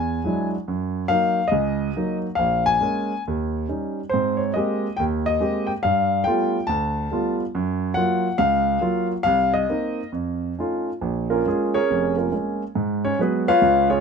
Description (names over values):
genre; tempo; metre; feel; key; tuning
solo jazz; 139 BPM; 4/4; swing 65% on 8ths, rubato; Bb minor; A4 = 440 Hz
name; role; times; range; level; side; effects
warm grand piano; solo; 0.0-14.0 s; F1 to A5; -20 LUFS; equal; none
room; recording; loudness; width
light reverb; minimal, uncompressed stereo recording; -20 LUFS; side -6 dB against mid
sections
0.0-11.0 A section; 11.0-14.0 B section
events
grand piano solo 11.0-14.0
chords
0.0 E9; 0.7 Gb6; 2.4 Bbm7; 3.2 Eb7; 4.1 Abmaj9; 5.8 G9; 7.5 Gbmaj7; 9.3 Cm7; 10.1 Faug7; 11.0 Bbm7; 12.8 Abm7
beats
0.23 | 0.66 1.09 1.52 1.95 | 2.38 2.81 3.25 3.69 | 4.12 4.56 4.99 5.42 | 5.85 6.27 6.70 7.12 | 7.55 7.97 8.40 8.83 | 9.27 9.70 10.13 10.58 | 11.02 11.45 11.89 12.32 | 12.75 13.18 13.61